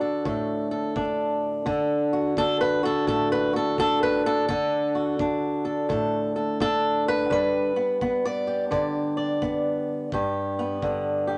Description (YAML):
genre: acoustic country blues, solo or duo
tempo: 85 BPM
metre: 4/4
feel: swing 64% on 8ths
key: D major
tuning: A4 = 440 Hz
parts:
  - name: fingerpicked swing-style acoustic guitar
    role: melody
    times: 0.0-11.4 s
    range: G2 to D5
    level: -25 LUFS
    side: equal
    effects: none
  - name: kick drum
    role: drums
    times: 0.3-11.0 s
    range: none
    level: -40 LUFS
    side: equal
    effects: none
room: moderate studio reverb, RT60 0.6 s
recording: nothing above 10.5 kHz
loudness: -25 LUFS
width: mono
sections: 0.0-11.4 A section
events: steel-string acoustic guitar solo 0.0-11.4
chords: 0.0 D; 7.3 G